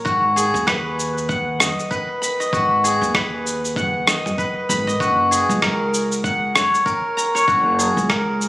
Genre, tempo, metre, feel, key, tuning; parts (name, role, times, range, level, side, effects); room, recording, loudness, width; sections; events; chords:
organic downtempo; 97 BPM; 4/4; swing 58% on 16ths; G# minor; A4 = 440 Hz
steel-string zither; arpeggios; 0.0-8.5 s; F#4 to B5; -18 LUFS; left 1 dB; tape echo
upright bass; bass; 0.1-8.5 s; F#1 to D#2; -25 LUFS; equal; tube saturation, sidechain pumping
dusty soul sampler-style drum kit; drums; 0.1-8.5 s; rim click, shaker, toms; -22 LUFS; equal; overdrive, studio reverb
electronic kick drum; drums; 0.1-8.2 s; -28 LUFS; equal; overdrive, studio reverb
light reverb, studio reverb; recorded on a phone in the room, club reverb, compression; -16 LUFS; side -18 dB against mid
0.0-8.5 A section
0.1 G#m7; 5.0 F#add9